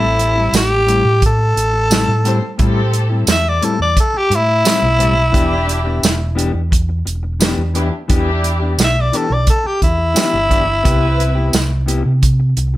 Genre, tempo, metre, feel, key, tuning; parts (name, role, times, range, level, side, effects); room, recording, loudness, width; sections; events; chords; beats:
straight-eighth soul blues; 87 BPM; 4/4; straight; E minor; A4 = 440 Hz
growling tenor saxophone; melody; 0.0-11.8 s; E4 to E5; -16 LUFS; left 1 dB
muted studio string section; sustained chords; 0.0-11.5 s; C4 to C5; -24 LUFS; equal
mellow electric guitar; stabs; 0.0-12.8 s; A2 to G4; -22 LUFS; left 4 dB; slapback echo
fingered electric bass; bass; 0.0-12.8 s; E1 to C3; -17 LUFS; equal
warm soul drum kit; drums; 0.2-12.7 s; hi-hat, kick drum, snare drum, tambourine; -16 LUFS; right 1 dB
light reverb; -13 LUFS; side -15 dB against mid
0.0-12.8 A section
0.0 Am7; 5.3 Em7; 10.8 Cmaj7
0.53 1.22 1.91 | 2.59 3.28 3.97 4.65 | 5.34 6.03 6.72 7.41 | 8.10 8.78 9.47 10.16 | 10.85 11.54 12.22